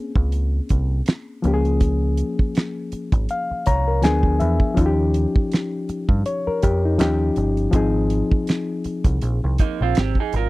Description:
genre	R&B, neo-soul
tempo	81 BPM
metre	4/4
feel	swing 58% on 16ths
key	unclear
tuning	A4 = 443 Hz
part	reed electric piano	accompaniment	0.0-10.5 s	F3 to Bb5	-23 LUFS	left 3 dB	none
part	deep dub picked electric bass	bass	0.2-10.5 s	G1 to G2	-21 LUFS	equal	none
part	damped 70s drum kit	drums	0.2-10.5 s	finger snaps, hi-hat, kick drum, snare drum	-19 LUFS	right 1 dB	none
part	electric guitar through a small old amp	second line	9.6-10.5 s	Bb3 to Bb4	-24 LUFS	right 12 dB	none
room	little or no reverb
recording	dry, close 1970s-style studio recording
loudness	-18 LUFS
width	side -19 dB against mid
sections	0.0-10.5 A section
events	reed electric piano fill 3.3-4.8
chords	0.0 Bbm9; 1.4 Db6; 4.0 Ddim7; 4.8 Eb9; 7.7 Ab6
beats	0.33 1.07 | 1.81 2.55 3.29 4.03 | 4.77 5.51 6.25 7.00 | 7.74 8.48 9.22 9.96

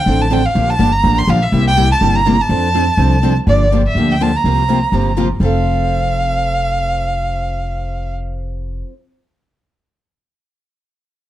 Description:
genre	acoustic string swing (jazz manouche)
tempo	247 BPM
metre	4/4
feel	swing 55% on 8ths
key	F major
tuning	A4 = 440 Hz
part	rich violin	melody	0.0-8.1 s	D5 to C6	-17 LUFS	right 2 dB	none
part	picked steel-string acoustic guitar	accompaniment	0.1-8.9 s	C3 to A4	-20 LUFS	left 4 dB	none
part	picked steel-string acoustic guitar	accompaniment	0.1-8.9 s	C3 to C5	-24 LUFS	right 8 dB	none
part	upright bass	bass	0.1-8.8 s	F1 to F2	-16 LUFS	equal	none
room	light reverb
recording	dark, warm production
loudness	-12 LUFS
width	side -13 dB against mid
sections	0.0-3.5 A section; 3.5-5.4 B section; 5.4-7.4 C section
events	none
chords	0.0 Dm7; 0.6 Bb6; 1.5 C7; 2.5 F6; 3.5 Gm7; 4.4 C7sus4; 5.4 F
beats	0.07 0.31 | 0.56 0.80 1.04 1.28 | 1.53 1.77 2.01 2.25 | 2.50 2.74 2.98 3.22 | 3.47 3.71 3.95 4.20 | 4.44 4.68 4.92 5.17 | 5.41 5.65 5.90 6.14 | 6.38 6.63 6.87 7.11

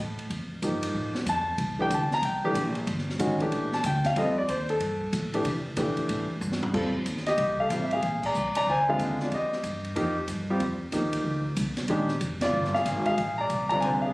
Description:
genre	jazz piano trio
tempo	186 BPM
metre	4/4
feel	swing 64% on 8ths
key	F mixolydian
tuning	A4 = 435 Hz
part	upright bass	bass	0.0-14.1 s	F1 to C3	-32 LUFS	equal	none
part	open jazz drum kit	drums	0.2-13.9 s	crash cymbal, hi-hat, kick drum, ride cymbal, snare drum, toms	-36 LUFS	equal	none
part	warm grand piano	melody	0.6-14.1 s	D3 to Bb5	-26 LUFS	equal	none
room	light reverb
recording	recorded on a phone in the room, club reverb, compression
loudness	-25 LUFS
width	side -21 dB against mid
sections	0.0-6.7 A section; 6.7-14.1 B section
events	grand piano solo 0.0-6.7; drum fill 6.4-6.7; band accent 8.2, 12.4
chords	0.0 F9; 1.6 C7sus2; 4.2 F9; 5.5 C9; 6.7 F9; 8.0 Bb9; 9.3 Fsus2; 11.9 Bb9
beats	| 0.31 0.63 0.95 1.27 | 1.59 1.92 2.24 2.56 | 2.88 3.20 3.52 3.84 | 4.17 4.49 4.81 5.13 | 5.45 5.77 6.09 6.42 | 6.74 7.06 7.38 7.71 | 8.03 8.35 8.67 8.99 | 9.31 9.64 9.96 10.28 | 10.60 10.93 11.25 11.57 | 11.89 12.21 12.54 12.86 | 13.18 13.50 13.82

